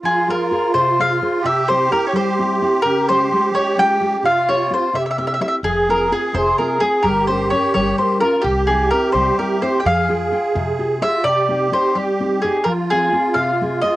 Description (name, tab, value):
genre	italian folk, Italian serenade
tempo	86 BPM (dotted quarters)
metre	6/8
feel	straight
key	F harmonic minor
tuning	A4 = 440 Hz
part	musette accordion	second line	0.0-14.0 s	F4 to Ab4	-22 LUFS	right 4 dB	cassette tape
part	nylon-string guitar	accompaniment	0.0-14.0 s	C3 to G5	-23 LUFS	left 1 dB	cassette tape
part	mandolin	melody	0.1-14.0 s	G4 to G5	-17 LUFS	equal	cassette tape
part	upright bass	bass	5.6-10.7 s	F1 to F2	-24 LUFS	equal	none
room	moderate studio ambience, RT60 0.5 s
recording	home recording on cassette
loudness	-15 LUFS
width	side -16 dB against mid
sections	0.0-11.2 A section; 11.2-14.0 B section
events	none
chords	0.0 Fm; 1.4 C; 2.8 Db; 4.2 Csus4; 4.9 C; 5.6 Fm; 7.0 Gdim; 8.4 C; 9.8 Fmadd9; 11.2 Cm; 12.7 Fm